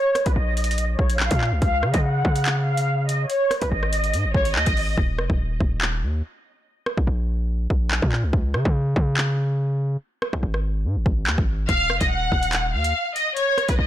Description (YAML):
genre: hip hop, drill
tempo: 143 BPM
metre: 4/4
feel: half-time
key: Eb minor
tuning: A4 = 438 Hz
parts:
  - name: warm studio violin section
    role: melody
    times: 0.0-4.9, 11.7-13.9 s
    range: Cb5 to Gb5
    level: -23 LUFS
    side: equal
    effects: low-pass filter
  - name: drill drum kit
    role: drums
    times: 0.2-13.8 s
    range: handclaps, hi-hat, kick drum, rim click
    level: -24 LUFS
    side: equal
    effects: soft clipping on snare
  - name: hard-hitting 808-style bass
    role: bass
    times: 0.3-13.9 s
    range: Eb1 to Db3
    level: -22 LUFS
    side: equal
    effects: none
room: little or no reverb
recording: blown-out, overdriven recording, overdrive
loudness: -20 LUFS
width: side -12 dB against mid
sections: 0.0-13.9 A section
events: filter sweep on violin section 0.0-5.0; hi-hats muted 5.0-11.7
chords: 0.0 Bbm; 1.6 Db; 3.3 Ab5; 5.0 N.C.; 11.7 Ebm; 13.4 Bbm